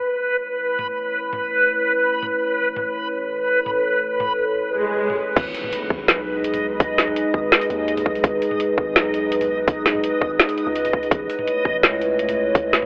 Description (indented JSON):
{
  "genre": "half-time drum and bass",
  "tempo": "167 BPM",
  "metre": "4/4",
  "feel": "half-time",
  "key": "G# phrygian",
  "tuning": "A4 = 440 Hz",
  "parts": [
    { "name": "dark analog pad", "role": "sustained chords", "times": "0.7-12.9 s", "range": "G#3 to C#5", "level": "-23 LUFS", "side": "equal", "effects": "chorus, phaser, sidechain pumping" },
    { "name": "backwards swelling texture", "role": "texture", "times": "0.0-12.9 s", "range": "B4 to D#5", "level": "-22 LUFS", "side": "equal", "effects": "built-in reverb" },
    { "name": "drum and bass drum kit", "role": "drums", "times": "0.8-12.9 s", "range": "crash cymbal, hi-hat, snare drum, toms", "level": "-19 LUFS", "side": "equal", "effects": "none" },
    { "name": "swell and impact", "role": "sound effects", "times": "4.7-6.8 s", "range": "none", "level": "-26 LUFS", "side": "right 1 dB", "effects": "none" },
    { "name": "long sustained 808-style bass", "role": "bass", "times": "5.4-12.9 s", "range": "G#1 to D#2", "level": "-33 LUFS", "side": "equal", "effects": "tube saturation" },
    { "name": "electronic kick drum", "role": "drums", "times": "5.4-12.6 s", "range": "none", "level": "-19 LUFS", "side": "equal", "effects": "none" }
  ],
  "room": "light reverb",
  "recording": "dry, gritty hardware recording, telephone sound",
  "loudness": "-18 LUFS",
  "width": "side -28 dB against mid",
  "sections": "0.0-5.4 A section; 5.4-12.9 B section",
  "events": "filter sweep on analog synth pad 0.0-5.4; swell 4.7-5.4; drop 5.4-12.9; impact 5.4-6.8",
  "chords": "0.0 A; 5.4 G#m; 11.1 A"
}